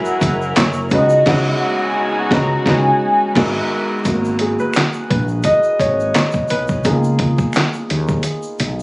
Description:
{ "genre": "R&B, neo-soul", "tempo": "86 BPM", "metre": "4/4", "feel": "swing 55% on 16ths", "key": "G# minor", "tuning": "A4 = 437 Hz", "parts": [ { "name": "warm velvety synth lead", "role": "melody", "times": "0.0-3.7 s", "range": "C#5 to A#5", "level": "-18 LUFS", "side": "equal", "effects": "chorus, phaser" }, { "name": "warm upright piano", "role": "accompaniment", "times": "0.0-8.8 s", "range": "G#3 to D#5", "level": "-19 LUFS", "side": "equal", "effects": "none" }, { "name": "warm studio string section", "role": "sustained chords", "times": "0.0-4.0 s", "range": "C#3 to B4", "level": "-23 LUFS", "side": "equal", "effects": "none" }, { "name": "tube shaker and finger snaps", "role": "percussion", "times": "0.1-8.8 s", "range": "none", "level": "-34 LUFS", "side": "equal", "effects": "none" }, { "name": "woody fretless electric bass", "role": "bass", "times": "0.2-8.8 s", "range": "F#1 to D#2", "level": "-19 LUFS", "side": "equal", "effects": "none" }, { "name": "dusty soul sampler-style drum kit", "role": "drums", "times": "0.2-8.8 s", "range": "crash cymbal, handclaps, hi-hat, kick drum, snare drum", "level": "-19 LUFS", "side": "equal", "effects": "none" } ], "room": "light reverb, small room ambience", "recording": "recorded on a phone in the room, studio ambience, vinyl crackle, nothing above 10.7 kHz", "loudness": "-14 LUFS", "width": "side -25 dB against mid", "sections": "0.0-4.1 A section; 4.1-8.8 B section", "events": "band accent 1.3-4.1; upright piano solo 4.1-8.8", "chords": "0.0 F#9; 0.9 C#9sus4; 3.4 G#m9; 4.1 G#m7; 6.8 C#13" }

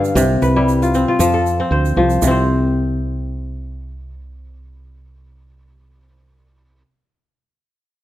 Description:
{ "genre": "west african traditional, West African string and xylophone music", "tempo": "116 BPM", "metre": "4/4", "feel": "swing 54% on 16ths", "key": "unclear", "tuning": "A4 = 439 Hz", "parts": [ { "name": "kora", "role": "arpeggios", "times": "0.0-6.9 s", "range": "G2 to F5", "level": "-16 LUFS", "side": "left 2 dB", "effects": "none" }, { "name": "egg shaker", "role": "percussion", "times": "0.0-2.5 s", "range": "none", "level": "-29 LUFS", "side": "right 14 dB", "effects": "none" }, { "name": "woody fretless electric bass", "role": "bass", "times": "0.2-6.8 s", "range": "C2 to F2", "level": "-20 LUFS", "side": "right 1 dB", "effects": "none" } ], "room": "moderate recital hall reverb, RT60 1.4 s", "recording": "none", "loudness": "-14 LUFS", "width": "side -14 dB against mid", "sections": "0.0-2.2 A section; 2.2-6.3 B section", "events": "none", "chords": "0.2 C; 1.2 F; 2.2 N.C." }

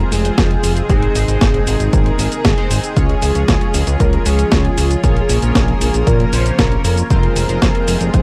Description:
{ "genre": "italo disco", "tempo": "116 BPM", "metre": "4/4", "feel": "straight", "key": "F minor", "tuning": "A4 = 440 Hz", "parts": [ { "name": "unison lead", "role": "melody", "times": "0.0-8.2 s", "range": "Ab4 to C5", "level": "-24 LUFS", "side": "equal", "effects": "tape echo" }, { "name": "clear studio string section", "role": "sustained chords", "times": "0.0-8.2 s", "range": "C3 to Bb4", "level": "-26 LUFS", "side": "equal", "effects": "none" }, { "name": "chorused polysynth", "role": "stabs", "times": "0.0-8.2 s", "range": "Ab3 to Db5", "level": "-28 LUFS", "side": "equal", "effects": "phaser" }, { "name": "fat analog bass", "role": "bass", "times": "0.0-8.2 s", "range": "F1 to Bb2", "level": "-19 LUFS", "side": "equal", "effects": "none" }, { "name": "clean 12-bit digital drum machine", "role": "drums", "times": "0.1-8.2 s", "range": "cabasa, hi-hat, snare drum", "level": "-22 LUFS", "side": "equal", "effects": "none" }, { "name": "electronic kick drum", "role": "drums", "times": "0.4-8.2 s", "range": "none", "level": "-19 LUFS", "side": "equal", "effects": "none" } ], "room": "little or no reverb", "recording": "dry, gritty hardware recording, vinyl crackle", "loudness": "-15 LUFS", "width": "mono", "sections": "0.0-8.2 A section", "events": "none", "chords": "0.0 Fm; 0.9 Ab; 3.0 Db; 5.0 Bbm; 7.1 Fm" }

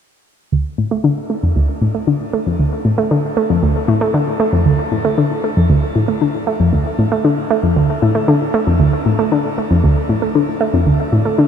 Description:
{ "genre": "ambient", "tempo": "116 BPM", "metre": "4/4", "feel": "straight", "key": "D minor", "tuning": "A4 = 440 Hz", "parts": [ { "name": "analog pluck", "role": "solo", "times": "0.5-11.4 s", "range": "D2 to A3", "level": "-13 LUFS", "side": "equal", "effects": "chorus, ping-pong delay" } ], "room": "moderate shimmer reverb, RT60 7.2 s", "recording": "dark, warm production", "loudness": "-13 LUFS", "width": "side -8 dB against mid", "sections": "0.5-4.7 A section; 4.7-11.5 B section", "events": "none", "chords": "none" }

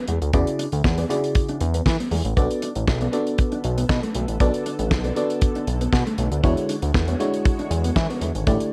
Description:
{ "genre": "early-eighties boogie funk", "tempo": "118 BPM", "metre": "4/4", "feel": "straight", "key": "unclear", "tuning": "A4 = 440 Hz", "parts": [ { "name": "mellow electric guitar", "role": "riff", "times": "0.0-8.6 s", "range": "G#3 to D4", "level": "-32 LUFS", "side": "equal", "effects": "analog chorus" }, { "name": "fat analog bass", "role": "bass", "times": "0.1-8.6 s", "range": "G#1 to E3", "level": "-25 LUFS", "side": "equal", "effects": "none" }, { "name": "damped 70s drum kit", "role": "drums", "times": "0.1-8.7 s", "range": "hi-hat, kick drum, snare drum", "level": "-25 LUFS", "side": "equal", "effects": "gated reverb" }, { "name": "FM electric piano", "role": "accompaniment", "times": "0.3-8.7 s", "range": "C#3 to D5", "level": "-27 LUFS", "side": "equal", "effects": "chorus" }, { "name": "soft string machine", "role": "sustained chords", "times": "3.2-8.7 s", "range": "D3 to C#5", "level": "-36 LUFS", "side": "equal", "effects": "ensemble chorus" } ], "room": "light reverb, small room ambience", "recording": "none", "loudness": "-22 LUFS", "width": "mono", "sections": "0.0-8.7 A section", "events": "none", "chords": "0.0 E13; 2.4 Bm7; 6.4 E13" }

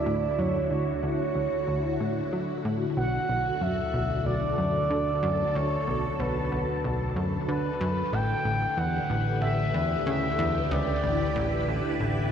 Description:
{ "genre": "ambient, sequencer-driven space music", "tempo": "93 BPM", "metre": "4/4", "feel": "straight", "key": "unclear", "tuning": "A4 = 440 Hz", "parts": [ { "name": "expressive synth lead", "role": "melody", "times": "0.0-11.7 s", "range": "B4 to G5", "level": "-30 LUFS", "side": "right 1 dB", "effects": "chorus, shimmer reverb, ping-pong delay" }, { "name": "phased string machine", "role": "sustained chords", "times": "0.0-12.3 s", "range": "D3 to B4", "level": "-31 LUFS", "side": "equal", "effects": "ensemble chorus, phaser, shimmer reverb" }, { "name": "fat analog bass", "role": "bass", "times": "0.0-12.3 s", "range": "D2", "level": "-34 LUFS", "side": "equal", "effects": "tube saturation" }, { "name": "plucky analog bass", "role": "riff", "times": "0.1-12.3 s", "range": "A1 to F#3", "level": "-29 LUFS", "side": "equal", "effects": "ping-pong delay" } ], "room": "wet cathedral reverb, RT60 5.6 s", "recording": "in a vast, echoing space", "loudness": "-25 LUFS", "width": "side -8 dB against mid", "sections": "0.0-12.3 A section", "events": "none", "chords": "0.0 Dmaj7; 3.0 Bm7; 8.1 A7sus4" }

